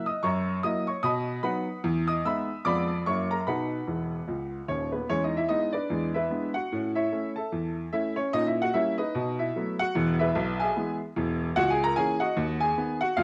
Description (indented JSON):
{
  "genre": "jazz, stride piano",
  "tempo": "148 BPM",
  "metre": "4/4",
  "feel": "swing 59% on 8ths",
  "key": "B major, E major from 5.1 s",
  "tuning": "A4 = 440 Hz",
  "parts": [
    { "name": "clear upright piano", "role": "solo", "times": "0.0-13.2 s", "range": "D#1 to E6", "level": "-28 LUFS", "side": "equal", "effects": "cassette tape" }
  ],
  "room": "light reverb, studio reverb",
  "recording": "home recording on cassette",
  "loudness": "-28 LUFS",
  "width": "mono",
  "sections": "0.0-5.1 A section; 5.1-13.2 B section",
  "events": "upright piano fill 3.9-5.1",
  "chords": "0.2 F#7; 1.0 B; 1.9 Emaj7; 2.7 Fdim7; 3.1 F#7; 3.5 B; 5.1 E; 5.9 E7; 6.7 A; 8.3 A#dim7; 9.1 B7; 9.9 E; 11.6 F#7/C#; 12.4 B/D#"
}